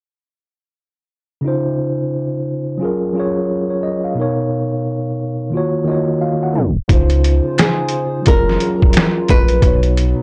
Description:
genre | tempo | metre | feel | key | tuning
lo-fi hip hop | 88 BPM | 4/4 | swing 61% on 16ths | Db major | A4 = 440 Hz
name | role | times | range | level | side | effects
mellow tine electric piano | accompaniment | 1.4-10.2 s | Cb3 to Bb5 | -20 LUFS | equal | cassette tape
hollow soft pad | sustained chords | 7.4-10.2 s | Db3 to Bb5 | -30 LUFS | equal | chorus
soft dub sub bass | bass | 6.9-10.1 s | Gb1 to Db2 | -18 LUFS | equal | transformer saturation
trip hop sampler-style drum kit | drums | 6.9-10.2 s | finger snaps, hi-hat, kick drum, snare drum | -16 LUFS | equal | vintage 12-bit sampler grit
flamenco guitar | melody | 7.6-10.2 s | Ab4 to Cb5 | -22 LUFS | equal | none
finger snaps | percussion | 7.6-9.1 s | none | -32 LUFS | equal | none
room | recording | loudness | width
little or no reverb | dry, gritty hardware recording, transformer saturation, cassette tape, tape stop, nothing above 10.5 kHz | -17 LUFS | mono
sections
1.4-6.9 A section; 6.9-10.2 B section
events
tine electric piano fill 5.5-6.9; tape stop 6.6-6.9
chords
1.4 Dbmaj9; 2.8 Gbmaj7; 4.2 Cbmaj7; 5.5 Ebm9; 6.9 Dbmaj9; 8.3 Gbmaj7; 9.6 Cb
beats
| 1.44 2.12 2.80 3.48 | 4.17 4.85 5.53 6.21 | 6.89 7.58 8.26 8.94 | 9.62

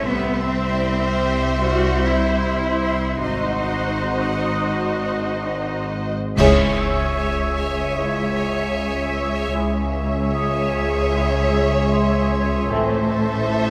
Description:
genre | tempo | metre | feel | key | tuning
cinematic, suspense film score | 76 BPM | 4/4 | straight | C# harmonic minor from 6.4 s | A4 = 440 Hz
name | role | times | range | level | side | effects
warm studio violin section | melody | 0.0-13.7 s | D#5 to E5 | -32 LUFS | equal | none
rich studio violin section | second line | 0.0-13.7 s | C5 to C#5 | -29 LUFS | equal | none
clear studio viola section | accompaniment | 0.0-13.7 s | G3 to A4 | -30 LUFS | equal | none
bubbling stepped-filter texture | sustained chords | 0.0-13.7 s | C5 to C6 | -31 LUFS | equal | chorus, built-in reverb
rich studio cello section | bass | 0.0-13.7 s | C#2 to F#4 | -28 LUFS | equal | none
rich studio double bass section | bass | 0.0-13.7 s | G#1 to C#2 | -28 LUFS | equal | none
analog drone | drone | 0.0-13.7 s | G#1 to C#2 | -29 LUFS | equal | chorus
vibraphone with medium mallets | texture | 0.0-13.7 s | D#5 to E6 | -34 LUFS | equal | none
warm French horn section | sustained chords | 6.4-13.0 s | G#3 to E4 | -31 LUFS | equal | none
clash cymbals and concert bass drum | percussion | 6.4-7.9 s | none | -28 LUFS | equal | none
room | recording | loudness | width
wet scoring stage reverb, RT60 1.6 s | none | -21 LUFS | mono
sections
0.0-6.4 A section; 6.4-13.7 B section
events
band accent 6.4-7.2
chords
0.1 C; 3.2 G#7; 6.4 C#m; 12.7 Am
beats
| 0.07 0.86 1.65 2.44 | 3.23 4.02 4.80 5.59 | 6.38 7.17 7.96 8.75 | 9.54 10.33 11.12 11.91 | 12.70 13.49

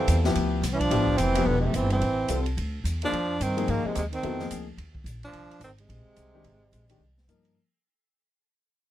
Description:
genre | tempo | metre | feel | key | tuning
modal jazz | 217 BPM | 4/4 | swing 61% on 8ths | unclear | A4 = 437 Hz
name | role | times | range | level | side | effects
breathy tenor saxophone | melody | 0.0-7.2 s | G#3 to D4 | -28 LUFS | right 1 dB | none
brilliant trombone | second line | 0.0-7.2 s | B2 to F3 | -33 LUFS | right 6 dB | none
clear baby grand piano | accompaniment | 0.0-7.6 s | Eb3 to F5 | -30 LUFS | left 5 dB | none
upright bass | bass | 0.0-7.5 s | E1 to Ab2 | -27 LUFS | equal | none
open jazz drum kit | drums | 0.1-7.5 s | hi-hat, kick drum, ride cymbal, snare drum | -36 LUFS | equal | none
room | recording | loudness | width
little or no reverb | close, detailed microphones | -24 LUFS | side -13 dB against mid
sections
0.0-7.5 A section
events
fade-out 0.0-7.5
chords
0.0 Dm9; 3.1 Fm9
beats
0.08 0.36 0.63 | 0.91 1.19 1.46 1.74 | 2.02 2.29 2.57 2.85 | 3.12 3.40 3.68 3.95 | 4.23 4.51 4.78 5.06 | 5.34 5.61 5.89 6.17 | 6.44 6.72 7.00 7.27

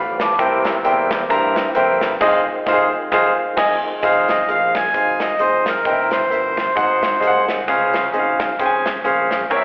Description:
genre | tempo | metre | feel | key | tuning
uptempo gospel | 132 BPM | 4/4 | swing 58% on 8ths | F minor | A4 = 439 Hz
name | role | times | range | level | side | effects
warm concert grand piano | accompaniment | 0.0-9.6 s | Ab2 to D6 | -16 LUFS | equal | slapback echo
percussive tonewheel organ | sustained chords | 0.0-4.0 s | Eb3 to G4 | -26 LUFS | equal | none
modern bright fingered electric bass | bass | 0.0-9.6 s | E1 to G2 | -28 LUFS | equal | none
modern studio drum kit | drums | 0.2-9.6 s | crash cymbal, hi-hat, kick drum, snare drum | -24 LUFS | equal | slapback echo
accordion | melody | 4.3-7.5 s | Bb4 to Ab5 | -18 LUFS | equal | none
room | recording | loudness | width
moderate club reverb, RT60 0.5 s | live gig heard through the venue's PA, recital hall reverb, telephone sound | -15 LUFS | side -40 dB against mid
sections
0.0-4.0 A section; 4.0-9.6 B section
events
band accent 2.2-4.0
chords
0.4 C7; 2.2 Fm7; 5.9 C7/E; 6.8 Ab7; 7.7 Dbmaj7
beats
| 0.39 0.85 1.30 1.76 | 2.21 2.67 3.12 3.58 | 4.03 4.49 4.95 5.40 | 5.86 6.32 6.77 7.23 | 7.69 8.14 8.60 9.06 | 9.51

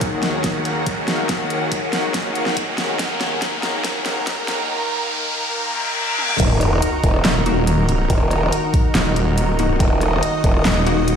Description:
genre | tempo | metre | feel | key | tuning
heavy wobble dubstep | 141 BPM | 4/4 | half-time | Eb minor | A4 = 440 Hz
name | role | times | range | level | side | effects
lush unison pad | sustained chords | 0.0-11.2 s | Eb2 to Eb5 | -23 LUFS | equal | chorus, sidechain pumping
dubstep drum kit | drums | 0.0-11.2 s | crash cymbal, handclaps, hi-hat, snare drum, toms | -23 LUFS | equal | overdrive
electronic kick drum | drums | 0.0-10.5 s | none | -19 LUFS | equal | overdrive
riser, reverse cymbal and sub drop | sound effects | 0.0-8.1 s | none | -24 LUFS | equal | none
rich studio string section | texture | 0.0-4.7 s | Eb4 to Gb5 | -27 LUFS | left 2 dB | sidechain pumping
growl bass | bass | 6.4-10.6 s | Eb1 | -18 LUFS | equal | chorus, overdrive
snarling distorted saw bass | bass | 7.2-11.2 s | Eb1 | -18 LUFS | equal | distortion, overdrive
orchestra-hit-like synth stab | stabs | 7.5-10.9 s | Bb3 to Gb4 | -23 LUFS | left 4 dB | built-in reverb, ping-pong delay
room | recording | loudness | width
light reverb | played on a big sound system in a bare room, stone room reverb, high-pass filter | -17 LUFS | side -7 dB against mid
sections
0.0-6.4 A section; 6.4-11.2 B section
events
build-up 0.0-6.4; drum fill 0.0-4.7, 6.2; riser 0.0-6.4; filter sweep 0.0-6.4; reverse cymbal 5.5-6.4; drop 6.4-11.2; impact 6.4-8.1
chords
0.0 Ebm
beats
0.01 0.44 0.86 | 1.29 1.72 2.14 2.57 | 2.99 3.42 3.84 4.27 | 4.70 5.12 5.55 5.97 | 6.40 6.82 7.25 7.67 | 8.10 8.53 8.95 9.38 | 9.80 10.23 10.65 11.08

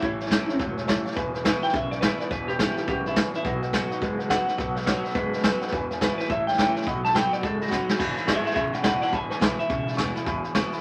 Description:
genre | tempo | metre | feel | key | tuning
rockabilly | 211 BPM | 4/4 | swing 62% on 8ths | E major | A4 = 443 Hz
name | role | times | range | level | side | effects
electric guitar through a small old amp | melody | 0.0-9.9 s | E4 to A5 | -30 LUFS | equal | tremolo
picked steel-string acoustic guitar | accompaniment | 0.0-10.8 s | E2 to F#4 | -36 LUFS | equal | none
warm upright piano | accompaniment | 0.0-10.8 s | B4 to C#6 | -35 LUFS | equal | none
electric guitar through a small old amp | riff | 0.0-10.8 s | E2 to G#3 | -34 LUFS | equal | tremolo
upright bass | bass | 0.0-10.7 s | E1 to B2 | -42 LUFS | equal | none
vintage brush drum kit | drums | 0.0-10.8 s | crash cymbal, hi-hat, kick drum, snare drum | -29 LUFS | equal | none
room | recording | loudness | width
moderate small room reverb, RT60 0.5 s | vinyl crackle | -25 LUFS | mono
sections
0.0-8.0 A section; 8.0-10.8 B section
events
drum fill 7.7; clean electric guitar solo 8.0-10.8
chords
0.0 A; 1.2 E; 3.4 B; 5.7 E; 6.3 A; 6.9 B; 8.0 E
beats
| 0.03 0.31 0.59 0.88 | 1.17 1.45 1.74 2.02 | 2.31 2.59 2.88 3.16 | 3.45 3.73 4.01 4.30 | 4.58 4.87 5.15 5.44 | 5.72 6.01 6.29 6.58 | 6.86 7.14 7.43 7.71 | 8.00 8.28 8.56 8.85 | 9.13 9.41 9.70 9.98 | 10.27 10.55

